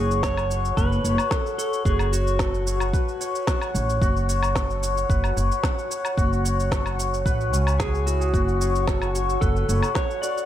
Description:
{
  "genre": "organic downtempo",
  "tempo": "111 BPM",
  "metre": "4/4",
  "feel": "straight",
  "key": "F# minor",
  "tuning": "A4 = 440 Hz",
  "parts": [
    { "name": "clean lap steel guitar", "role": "melody", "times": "0.0-3.7, 7.8-10.5 s", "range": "F#4 to D5", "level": "-29 LUFS", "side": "equal", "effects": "ping-pong delay" },
    { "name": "santur", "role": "arpeggios", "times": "0.0-10.5 s", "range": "C#4 to F#5", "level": "-27 LUFS", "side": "left 3 dB", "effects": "ping-pong delay" },
    { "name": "upright bass", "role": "bass", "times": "0.0-9.8 s", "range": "F#1 to C#2", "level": "-24 LUFS", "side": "equal", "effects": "none" },
    { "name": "wind-like tuned noise texture", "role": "texture", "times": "0.2-10.5 s", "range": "F#4 to F#5", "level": "-36 LUFS", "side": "equal", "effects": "built-in reverb" },
    { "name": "electronic cabasa, snare drum and woodblock", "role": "drums", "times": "0.1-10.5 s", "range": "none", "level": "-30 LUFS", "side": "equal", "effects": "none" },
    { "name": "electronic kick drum", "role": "drums", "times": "0.2-10.1 s", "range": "none", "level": "-25 LUFS", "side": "equal", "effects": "none" }
  ],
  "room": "light reverb, small room ambience",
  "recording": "none",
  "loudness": "-20 LUFS",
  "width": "side -11 dB against mid",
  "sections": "0.0-10.5 A section",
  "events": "none",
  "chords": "0.0 F#m"
}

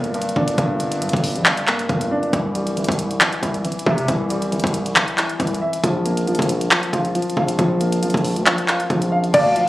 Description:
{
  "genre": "hip hop, trap",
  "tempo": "137 BPM",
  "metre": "4/4",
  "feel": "half-time",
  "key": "unclear",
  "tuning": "A4 = 441 Hz",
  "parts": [
    { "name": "dark baby grand piano", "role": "accompaniment", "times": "0.0-9.7 s", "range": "G2 to F5", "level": "-22 LUFS", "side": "equal", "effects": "low-pass filter" },
    { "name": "distorted 808-style bass", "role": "bass", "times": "0.0-9.7 s", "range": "G1 to C3", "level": "-22 LUFS", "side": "equal", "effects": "distortion" },
    { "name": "trap drum kit", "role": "drums", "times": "0.0-9.7 s", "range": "crash cymbal, handclaps, hi-hat, kick drum", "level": "-20 LUFS", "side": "equal", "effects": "none" },
    { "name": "felt-muted upright piano", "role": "melody", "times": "9.3-9.7 s", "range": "D5 to F5", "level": "-15 LUFS", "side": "equal", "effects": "low-pass filter" },
    { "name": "gliding portamento lead", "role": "second line", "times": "9.3-9.7 s", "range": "F5", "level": "-17 LUFS", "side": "left 1 dB", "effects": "chorus" },
    { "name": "warm symphonic string section", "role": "sustained chords", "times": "9.3-9.7 s", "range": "F3 to A4", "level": "-30 LUFS", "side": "left 1 dB", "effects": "none" }
  ],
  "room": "light reverb, studio reverb",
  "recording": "recorded on a phone in the room, club reverb, compression",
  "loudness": "-17 LUFS",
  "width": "side -17 dB against mid",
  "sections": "0.0-9.3 A section",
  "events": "none",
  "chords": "0.0 Gm; 2.3 C; 5.8 Bb5"
}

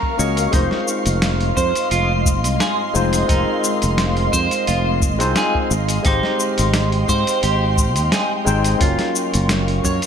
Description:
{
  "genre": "sunset chillout",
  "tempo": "87 BPM",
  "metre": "4/4",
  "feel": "swing 54% on 16ths",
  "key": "F minor",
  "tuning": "A4 = 440 Hz",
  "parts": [
    { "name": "barky tine electric piano", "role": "accompaniment", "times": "0.0-10.1 s", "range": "Gb3 to G5", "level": "-23 LUFS", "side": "moving between left 3 dB and right 6 dB", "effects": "overdrive, auto-pan, ping-pong delay" },
    { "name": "ethereal airy pad", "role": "sustained chords", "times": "0.0-10.1 s", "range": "Ab3 to Db6", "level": "-24 LUFS", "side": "equal", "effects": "ensemble chorus, built-in reverb, tremolo" },
    { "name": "electric guitar at the edge of break-up", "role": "arpeggios", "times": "0.0-10.1 s", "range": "Eb4 to Bb5", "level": "-24 LUFS", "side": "right 2 dB", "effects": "phaser, ping-pong delay" },
    { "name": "electronic kick drum", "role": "drums", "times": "0.0-10.0 s", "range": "none", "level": "-20 LUFS", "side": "equal", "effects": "studio reverb" },
    { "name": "drifting glass-harmonics texture", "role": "texture", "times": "0.0-10.1 s", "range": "F5", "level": "-32 LUFS", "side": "right 1 dB", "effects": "chorus, built-in reverb" },
    { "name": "fretless electric bass", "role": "bass", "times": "0.2-10.0 s", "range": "F1 to Ab2", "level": "-20 LUFS", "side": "equal", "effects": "tube saturation, wide subtle chorus" },
    { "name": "dusty soul sampler-style drum kit", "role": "drums", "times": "0.2-10.1 s", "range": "hi-hat, shaker, snare drum", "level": "-24 LUFS", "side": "left 1 dB", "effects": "overdrive, studio reverb" }
  ],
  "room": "moderate plate reverb, RT60 1.9 s, digital ambience",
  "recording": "bright 1980s-style digital production",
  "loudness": "-16 LUFS",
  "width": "side -7 dB against mid",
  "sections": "0.0-10.1 A section",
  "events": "none",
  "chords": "0.0 Gbmaj7; 0.5 Fm7; 5.7 Abmaj7; 8.8 Gbmaj7"
}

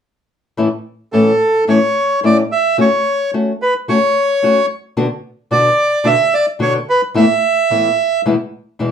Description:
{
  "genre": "tango",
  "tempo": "110 BPM",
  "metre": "4/4",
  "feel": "rubato",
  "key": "A major",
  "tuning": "A4 = 442 Hz",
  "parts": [
    { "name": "nylon-string guitar", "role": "accompaniment", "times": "0.6-8.9 s", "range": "E2 to F#4", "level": "-15 LUFS", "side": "left 2 dB", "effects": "none" },
    { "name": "bandoneon", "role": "melody", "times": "1.1-8.2 s", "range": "A4 to E5", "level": "-13 LUFS", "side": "right 1 dB", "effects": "none" }
  ],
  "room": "wet studio reverb, RT60 0.5 s",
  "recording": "band playing live in one room",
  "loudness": "-12 LUFS",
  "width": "side -8 dB against mid",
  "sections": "0.6-8.9 A section",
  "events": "none",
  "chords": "0.6 A; 2.8 F#m/A; 5.0 Bm; 7.1 Esus4; 8.2 E"
}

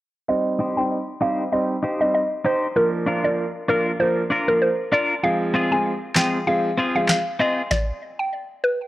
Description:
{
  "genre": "dancehall",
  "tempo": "97 BPM",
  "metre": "4/4",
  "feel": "swing 56% on 16ths",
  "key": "C minor",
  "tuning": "A4 = 437 Hz",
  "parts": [
    { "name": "mallet-like synth pluck", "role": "melody", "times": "0.3-8.8 s", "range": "Bb4 to Ab5", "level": "-22 LUFS", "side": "equal", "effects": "chorus, low-pass filter" },
    { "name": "clear concert grand piano", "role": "accompaniment", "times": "0.3-7.1 s", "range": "F3 to C5", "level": "-24 LUFS", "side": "right 1 dB", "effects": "low-pass filter" },
    { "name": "twelve-string electric guitar", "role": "arpeggios", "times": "0.6-7.6 s", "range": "C4 to C5", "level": "-25 LUFS", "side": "left 1 dB", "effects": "spring reverb, low-pass filter" },
    { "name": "booming analog drum machine", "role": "drums", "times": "6.2-7.9 s", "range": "handclaps, kick drum, snare drum", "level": "-21 LUFS", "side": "equal", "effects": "none" }
  ],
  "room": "light reverb",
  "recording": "dry, gritty hardware recording, cassette tape",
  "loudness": "-19 LUFS",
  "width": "side -16 dB against mid",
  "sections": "0.3-8.9 A section",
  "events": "filter sweep 0.3-8.9; stop 7.7-8.9",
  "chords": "0.3 Cm; 2.8 Bb; 5.2 Fm; 7.7 N.C."
}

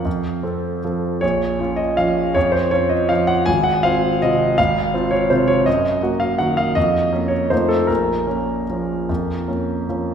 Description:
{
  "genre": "classical, piano waltz",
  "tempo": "145-171 BPM",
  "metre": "3/4",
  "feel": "rubato",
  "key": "Bb minor",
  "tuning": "A4 = 439 Hz",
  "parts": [
    { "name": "clear concert grand piano", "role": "solo", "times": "0.0-10.1 s", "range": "Ab1 to Ab5", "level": "-16 LUFS", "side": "equal", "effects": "none" }
  ],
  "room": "wet scoring stage reverb, RT60 2.0 s",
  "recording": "recorded in a church or concert hall",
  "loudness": "-16 LUFS",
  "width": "side -7 dB against mid",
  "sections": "0.0-10.1 A section",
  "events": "none",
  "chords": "0.1 F; 1.2 Bbm; 3.5 Fm/Ab; 5.7 Ebm/Gb; 6.8 Bbm/F; 7.5 F7; 7.9 Bbm"
}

